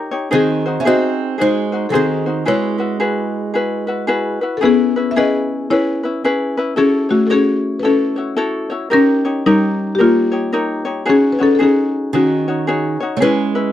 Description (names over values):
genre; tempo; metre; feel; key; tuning
Hawaiian; 112 BPM; 4/4; swing 62% on 8ths; C# minor; A4 = 440 Hz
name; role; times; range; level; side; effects
ukulele; accompaniment; 0.0-13.7 s; C#4 to C#5; -19 LUFS; left 1 dB; none
buzzing marimba with medium mallets; melody; 0.3-13.7 s; G3 to E5; -15 LUFS; left 2 dB; none
fingerpicked acoustic archtop guitar; second line; 0.3-4.4, 12.1-13.7 s; D#3 to C#4; -21 LUFS; right 7 dB; none
room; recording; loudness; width
little or no reverb; dry, close 1970s-style studio recording; -14 LUFS; side -12 dB against mid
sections
0.0-4.6 A section; 4.6-13.7 A section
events
none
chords
0.3 G#7; 2.5 C#m7; 6.8 F#m7; 8.9 D#7/G; 11.1 G#7sus4; 13.2 C#m7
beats
| 0.31 0.85 1.39 1.93 | 2.47 3.00 3.54 4.08 | 4.62 5.16 5.69 6.23 | 6.77 7.30 7.84 8.38 | 8.91 9.45 9.99 10.53 | 11.06 11.60 12.13 12.67 | 13.21